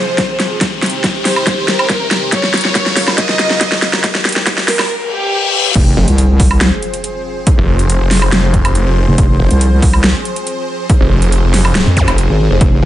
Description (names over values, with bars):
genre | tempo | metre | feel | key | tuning
heavy wobble dubstep | 140 BPM | 4/4 | half-time | F minor | A4 = 445 Hz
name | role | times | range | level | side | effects
warm chamber violin section | melody | 0.0-5.7 s | G4 to Eb5 | -19 LUFS | equal | dub echo
supersaw pad | sustained chords | 0.0-12.9 s | C3 to F5 | -21 LUFS | equal | phaser, sidechain pumping
riser, reverse cymbal, impact and zap | sound effects | 0.0-7.5, 12.0-12.1 s | none | -20 LUFS | left 2 dB | none
big-room dance drum kit | drums | 0.2-12.7 s | crash cymbal, hi-hat, snare drum, woodblock | -15 LUFS | equal | overdrive
electronic kick drum | drums | 0.2-12.7 s | none | -15 LUFS | equal | overdrive
wobble bass | bass | 5.8-12.8 s | F1 to F2 | -11 LUFS | equal | chorus, overdrive
snarling distorted saw bass | bass | 6.0-12.9 s | F1 | -12 LUFS | equal | distortion, overdrive
room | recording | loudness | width
light reverb | high-pass filter, nothing above 10.4 kHz | -10 LUFS | side -13 dB against mid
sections
0.0-5.8 A section; 5.8-12.9 B section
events
build-up 0.0-5.8; drum fill 0.0-4.9; riser 0.0-4.9; filter sweep 0.0-5.8; reverse cymbal 4.9-5.8; drop 5.8-12.9; impact 5.8-7.5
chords
0.0 Fm; 0.6 Cm; 2.3 Bbmadd9; 4.0 Eb; 4.9 N.C.; 5.8 Fm